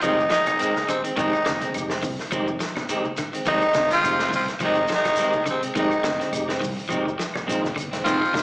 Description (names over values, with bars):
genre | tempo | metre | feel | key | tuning
afrobeat | 105 BPM | 4/4 | swing 55% on 16ths | F dorian | A4 = 440 Hz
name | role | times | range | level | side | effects
growling tenor saxophone | melody | 0.0-8.4 s | C4 to F4 | -21 LUFS | equal | slapback echo
bright baritone saxophone | second line | 0.0-8.4 s | C3 to F3 | -32 LUFS | left 1 dB | none
raspy tenor saxophone | second line | 0.0-8.4 s | Ab3 to C4 | -32 LUFS | right 1 dB | none
tonewheel organ | accompaniment | 0.0-8.2 s | Ab3 to Bb4 | -31 LUFS | equal | slow rotary speaker, overdrive, chorus vibrato, slapback echo
electric guitar at the edge of break-up | arpeggios | 0.0-8.4 s | C3 to F3 | -32 LUFS | left 2 dB | tremolo, slapback echo
clean electric guitar | stabs | 0.0-8.4 s | Eb3 to C4 | -28 LUFS | right 1 dB | slapback echo
fingered electric bass | bass | 0.0-8.4 s | F1 to C2 | -32 LUFS | equal | none
vintage drum kit | drums | 0.0-8.4 s | hi-hat, kick drum, snare drum | -32 LUFS | equal | none
claves | percussion | 0.0-8.3 s | none | -36 LUFS | left 1 dB | none
congas | percussion | 0.0-8.4 s | none | -34 LUFS | equal | slapback echo
shekere | percussion | 0.0-8.4 s | none | -39 LUFS | equal | none
room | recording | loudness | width
moderate lush hall reverb, RT60 1.7 s | live gig heard through the venue's PA, club reverb, small speaker sound | -20 LUFS | side -22 dB against mid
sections
0.0-8.4 A section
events
none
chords
0.0 Fm7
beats
0.03 0.60 | 1.17 1.75 2.32 2.89 | 3.47 4.04 4.61 5.18 | 5.76 6.33 6.91 7.48 | 8.05